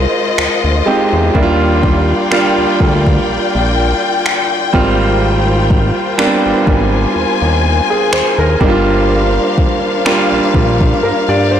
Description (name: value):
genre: contemporary R&B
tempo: 62 BPM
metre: 4/4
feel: swing 54% on 16ths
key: unclear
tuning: A4 = 441 Hz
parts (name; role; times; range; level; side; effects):
- clear grand piano; accompaniment; 0.0-11.6 s; G3 to D5; -14 LUFS; right 2 dB; none
- warm studio string section; sustained chords; 0.0-11.6 s; Ab3 to Ab5; -16 LUFS; left 4 dB; sidechain pumping
- fat analog bass; bass; 0.0-11.6 s; G1 to G2; -15 LUFS; equal; none
- smooth R&B drum kit; drums; 0.4-11.0 s; finger snaps, kick drum; -16 LUFS; equal; soft clipping on snare
room: light reverb, small room reverb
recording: blown-out, overdriven recording, overdrive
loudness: -10 LUFS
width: side -9 dB against mid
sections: 0.0-11.6 A section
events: none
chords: 0.0 Fm7; 1.4 Ebmaj7; 4.7 Abmaj13; 8.6 C9sus4/G